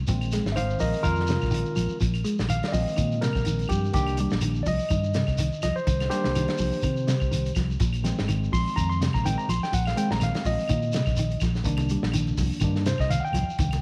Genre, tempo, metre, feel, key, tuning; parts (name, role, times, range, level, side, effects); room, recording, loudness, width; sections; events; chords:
afrobeat; 124 BPM; 4/4; swing 55% on 16ths; A4 = 440 Hz
fingered electric bass; bass; 0.0-13.8 s; Ab1 to C3; -30 LUFS; equal
barky tine electric piano; accompaniment; 0.1-13.8 s; Eb3 to C6; -32 LUFS; equal
mellow electric guitar; arpeggios; 0.1-13.7 s; C3 to Ab3; -32 LUFS; equal; analog chorus
vintage drum kit; drums; 0.1-13.8 s; hi-hat, kick drum, snare drum; -33 LUFS; equal
shekere; percussion; 0.1-13.8 s; -37 LUFS; equal
claves; percussion; 0.2-13.8 s; -45 LUFS; equal
congas; percussion; 11.7-13.8 s; -38 LUFS; equal
moderate echo chamber reverb, RT60 1.7 s, small room reverb; -25 LUFS; mono
0.0-13.8 A section
tine electric piano solo 0.0-13.8
0.1 Bb9sus4; 3.9 Cm7; 7.8 Bb9sus4; 11.7 Cm7